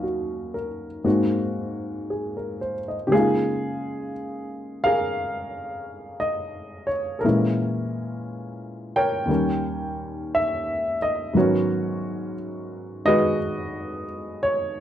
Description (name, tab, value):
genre	jazz ballad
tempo	58 BPM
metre	4/4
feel	swing 66% on 8ths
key	G# minor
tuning	A4 = 440 Hz
part	warm baby grand piano	solo	0.0-14.8 s	D#2 to G5	-23 LUFS	equal	slapback echo
room	light reverb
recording	dry, close 1970s-style studio recording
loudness	-22 LUFS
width	side -10 dB against mid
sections	0.0-14.8 A section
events	none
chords	0.0 D#m9; 1.1 G#7; 3.1 C#6; 7.2 A#m7b5; 9.3 D#7; 11.3 G#m11